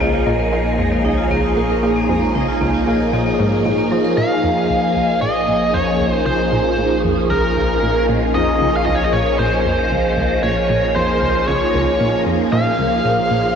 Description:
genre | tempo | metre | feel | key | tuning
ambient, sequencer-driven space music | 115 BPM | 4/4 | straight | Bb minor | A4 = 439 Hz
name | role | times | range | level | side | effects
phased string machine | sustained chords | 0.0-13.6 s | F3 to Db5 | -18 LUFS | equal | ensemble chorus, phaser
vibraphone with hard mallets | arpeggios | 0.0-4.1 s | F3 to Bb4 | -22 LUFS | equal | auto-pan, tape echo
analog pluck | riff | 0.0-13.5 s | Db2 to F3 | -23 LUFS | equal | chorus, tape echo
round analog bass | bass | 0.0-13.6 s | Bb1 | -25 LUFS | equal | none
biting lead guitar | melody | 4.2-13.6 s | Bb4 to F5 | -19 LUFS | equal | overdrive, tape echo
room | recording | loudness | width
wet lush hall reverb, RT60 2.7 s | worn, warbling old tape, cassette tape, warbly pitch drift | -14 LUFS | side -7 dB against mid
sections
0.0-4.2 A section; 4.2-13.6 B section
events
filter sweep on synth arpeggio sound 4.2-13.6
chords
0.0 Bbm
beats
| 0.00 0.52 1.05 1.57 | 2.09 2.61 3.13 3.65 | 4.18 4.70 5.22 5.74 | 6.26 6.79 7.31 7.83 | 8.35 8.87 9.39 9.91 | 10.44 10.96 11.48 12.00 | 12.52 13.05

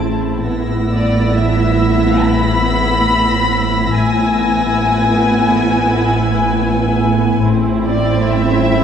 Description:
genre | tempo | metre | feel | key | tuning
cinematic, suspense film score | free time | none | none | unclear | A4 = 442 Hz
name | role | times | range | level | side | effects
dark studio violin section | melody | 0.0-8.8 s | D5 to B5 | -18 LUFS | left 2 dB | none
warm studio viola section | accompaniment | 0.0-8.8 s | B3 to E4 | -18 LUFS | right 2 dB | none
dark studio cello section | bass | 0.0-8.8 s | A2 | -19 LUFS | left 1 dB | none
warm studio double bass section | bass | 0.0-8.8 s | A1 | -20 LUFS | right 3 dB | none
metallic inharmonic drone | drone | 0.0-8.8 s | A1 | -22 LUFS | left 2 dB | chorus, built-in reverb
dark studio violin section | texture | 0.5-7.0 s | E6 to Bb6 | -28 LUFS | equal | none
room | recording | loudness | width
wet scoring stage reverb, RT60 1.7 s | heard from further back in the room | -12 LUFS | side -8 dB against mid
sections
0.0-8.8 A section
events
none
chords
0.5 E/A; 7.4 Am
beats
free time

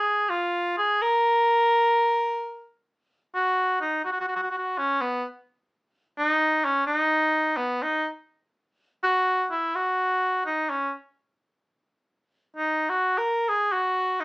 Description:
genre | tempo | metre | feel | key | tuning
calypso | 127 BPM | 4/4 | straight | unclear | A4 = 440 Hz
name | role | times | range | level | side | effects
warm cor anglais | solo | 0.0-14.2 s | B3 to A#4 | -22 LUFS | equal | none
room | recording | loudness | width
wet studio reverb, RT60 0.5 s | band playing live in one room, small speaker sound | -22 LUFS | side -28 dB against mid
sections
0.0-3.1 A section; 3.1-14.2 B section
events
cor anglais solo 3.1-14.2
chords
none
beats
0.30 0.77 | 1.24 1.71 2.18 2.65 | 3.12 3.59 4.06 4.54 | 5.01 5.48 5.95 6.42 | 6.89 7.36 7.83 8.31 | 8.78 9.25 9.72 10.19 | 10.67 11.14 11.61 12.08 | 12.55 13.03 13.50 13.97

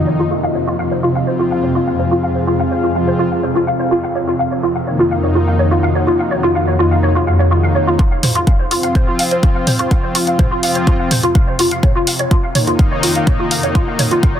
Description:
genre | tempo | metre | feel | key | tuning
melodic techno | 125 BPM | 4/4 | straight | F phrygian | A4 = 438 Hz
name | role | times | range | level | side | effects
deep dark ambient pad | sustained chords | 0.0-14.4 s | Bb3 to Gb5 | -23 LUFS | equal | chorus, built-in reverb, sidechain pumping
woody wave-folded pluck | arpeggios | 0.0-14.4 s | F4 to F5 | -18 LUFS | equal | ensemble chorus, sidechain pumping, dub echo
brassy analog pad | stabs | 0.0-14.4 s | F2 to F4 | -18 LUFS | left 1 dB | chorus, sidechain pumping, dub echo
swarming drone | drone | 0.0-14.4 s | F2 to C3 | -24 LUFS | equal | built-in reverb, sidechain pumping
electronic kick drum | drums | 8.0-14.3 s | none | -13 LUFS | equal | none
punchy analog drum machine | drums | 8.0-14.3 s | hi-hat, toms | -18 LUFS | equal | none
room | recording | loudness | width
moderate lush hall reverb, RT60 1.9 s, digital ambience | dense, heavily limited modern master | -12 LUFS | side -9 dB against mid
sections
0.0-8.0 A section; 8.0-14.4 B section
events
filter sweep on synth pluck 0.0-8.0; build-up 8.0-14.4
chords
0.3 Fm; 4.2 Ebm/F; 8.0 Fm; 11.8 Ebm/F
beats
| 0.31 0.79 1.27 1.75 | 2.23 2.71 3.19 3.67 | 4.15 4.63 5.11 5.59 | 6.07 6.55 7.03 7.51 | 7.99 8.47 8.95 9.43 | 9.91 10.39 10.87 11.35 | 11.83 12.31 12.79 13.27 | 13.75 14.23

